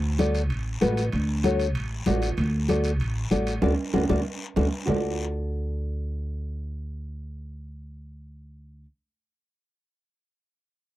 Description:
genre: latin, cumbia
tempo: 192 BPM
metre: 4/4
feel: straight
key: D major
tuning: A4 = 438 Hz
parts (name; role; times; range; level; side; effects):
- upright bass; bass; 0.0-8.8 s; A1 to D2; -27 LUFS; equal; none
- flamenco guitar; accompaniment; 0.2-8.9 s; F#4 to D5; -26 LUFS; left 2 dB; none
- congas; percussion; 0.2-5.0 s; none; -29 LUFS; left 2 dB; none
- guiro; percussion; 0.2-5.0 s; none; -41 LUFS; left 5 dB; none
- timbales; percussion; 0.2-4.9 s; none; -33 LUFS; right 6 dB; none
room: little or no reverb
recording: dry, close 1970s-style studio recording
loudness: -24 LUFS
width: side -15 dB against mid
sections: 0.0-4.9 A section; 4.9-7.4 B section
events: band accent 3.6-4.9; drum fill 4.1-4.9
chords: 0.0 D

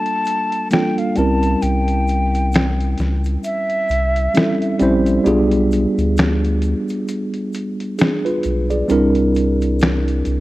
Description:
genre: lo-fi hip hop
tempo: 66 BPM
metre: 4/4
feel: swing 57% on 16ths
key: G dorian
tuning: A4 = 441 Hz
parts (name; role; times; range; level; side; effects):
- breathy mellow silver concert flute; melody; 0.0-4.8 s; E5 to A5; -22 LUFS; equal; low-pass filter, tape echo
- tine electric piano; accompaniment; 0.0-10.4 s; G3 to D5; -18 LUFS; right 1 dB; medium stereo tremolo, cassette tape, low-pass filter
- dusty soul sampler-style drum kit; drums; 0.1-10.4 s; finger snaps, hi-hat, snare drum; -20 LUFS; left 1 dB; vintage 12-bit sampler grit
- egg shaker; percussion; 0.2-10.4 s; none; -48 LUFS; left 5 dB; none
- round analog bass; bass; 1.2-10.4 s; Bb1 to D2; -19 LUFS; equal; none
room: light reverb, digital ambience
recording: cassette tape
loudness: -15 LUFS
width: side -17 dB against mid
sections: 0.0-10.4 A section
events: break 0.0-10.4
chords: 0.0 Gm9; 1.2 C7b9; 5.3 G7b9/B; 8.9 C9

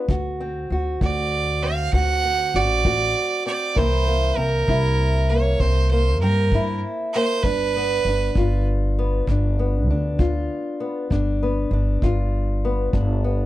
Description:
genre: acoustic country blues, solo or duo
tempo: 65 BPM (dotted quarters)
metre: 12/8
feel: straight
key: G mixolydian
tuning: A4 = 441 Hz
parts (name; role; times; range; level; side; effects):
- fingerpicked old ladder-braced acoustic guitar; accompaniment; 0.0-13.5 s; G2 to F#4; -25 LUFS; left 2 dB; none
- upright bass; bass; 0.1-13.5 s; G1 to G2; -21 LUFS; equal; none
- kick drum; drums; 0.1-13.1 s; none; -24 LUFS; equal; none
- clear fiddle; melody; 1.0-8.7 s; Bb4 to F#5; -23 LUFS; right 5 dB; none
room: light reverb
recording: dark, warm production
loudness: -19 LUFS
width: side -15 dB against mid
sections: 0.0-13.5 A section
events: none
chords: 0.1 D7; 3.8 C7; 7.4 G7

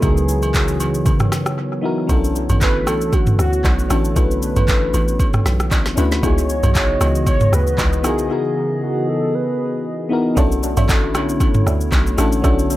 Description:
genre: amapiano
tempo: 116 BPM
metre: 4/4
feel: swing 55% on 16ths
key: B dorian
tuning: A4 = 440 Hz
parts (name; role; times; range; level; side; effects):
- warm velvety synth lead; melody; 0.0-10.1 s; F#4 to C#5; -23 LUFS; equal; chorus, analog delay
- mellow FM electric piano; accompaniment; 0.0-12.8 s; B3 to B4; -23 LUFS; left 3 dB; chorus, analog delay
- hollow soft pad; sustained chords; 0.0-12.8 s; C#3 to D#5; -25 LUFS; right 1 dB; chorus
- clear double bass; bass; 0.0-2.1 s; C#2 to C#3; -21 LUFS; equal; none
- afro-pop drum kit; drums; 0.0-12.8 s; handclaps, kick drum, rim click, shaker, snare drum, toms; -18 LUFS; equal; none
- agogo bells and woodblock; percussion; 0.0-12.6 s; none; -31 LUFS; right 2 dB; analog delay
- hollow log drum bass; bass; 2.1-12.8 s; A1 to D2; -20 LUFS; equal; none
- soft round pluck; stabs; 10.4-12.6 s; A4 to E5; -28 LUFS; right 4 dB; chorus, analog delay
room: little or no reverb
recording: echo-heavy mix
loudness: -15 LUFS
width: side -15 dB against mid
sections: 0.0-10.4 A section; 10.4-12.8 B section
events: break 1.6-2.1, 8.3-10.4; drop 10.4-12.8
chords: 0.0 C#m11; 2.1 Bm11; 6.2 C#m11; 10.4 Bm11

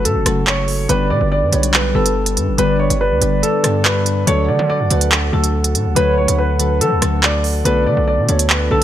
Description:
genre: hip hop, drill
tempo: 142 BPM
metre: 4/4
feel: half-time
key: unclear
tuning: A4 = 440 Hz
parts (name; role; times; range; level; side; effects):
- dark concert grand piano; melody; 0.0-8.8 s; A4 to D5; -20 LUFS; left 1 dB; none
- gliding portamento lead; second line; 0.0-8.8 s; A4 to D5; -25 LUFS; right 6 dB; chorus, ping-pong delay
- soft electric-piano-like synth keys; accompaniment; 0.0-8.8 s; C#3 to B4; -21 LUFS; left 3 dB; chorus
- glass harmonica; sustained chords; 0.0-8.8 s; G3 to F#5; -27 LUFS; right 1 dB; none
- distorted 808-style bass; bass; 0.0-8.8 s; F#1 to F#3; -18 LUFS; equal; distortion
- drill drum kit; drums; 0.1-8.6 s; handclaps, hi-hat, rim click; -17 LUFS; right 2 dB; none
room: digital ambience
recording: none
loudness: -13 LUFS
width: side -11 dB against mid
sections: 0.0-8.8 A section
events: none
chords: 0.0 F#m; 0.9 G; 4.3 D; 7.7 Bm7

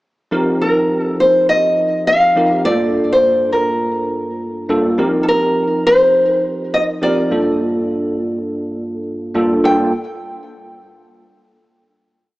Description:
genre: R&B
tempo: 103 BPM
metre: 4/4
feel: swing 63% on 16ths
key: G minor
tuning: A4 = 441 Hz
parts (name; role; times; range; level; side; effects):
- bell-like tine electric piano; accompaniment; 0.3-9.9 s; G2 to Bb4; -18 LUFS; equal; ensemble chorus
- nylon-string guitar; melody; 0.6-9.9 s; A4 to G5; -15 LUFS; equal; none
room: moderate lush hall reverb, RT60 2.5 s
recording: small speaker sound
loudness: -13 LUFS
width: side -18 dB against mid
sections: 0.3-9.6 chorus; 9.6-12.0 final chord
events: none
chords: 0.3 F7sus4; 2.7 Gm7; 5.0 F7sus4; 7.3 Gm7

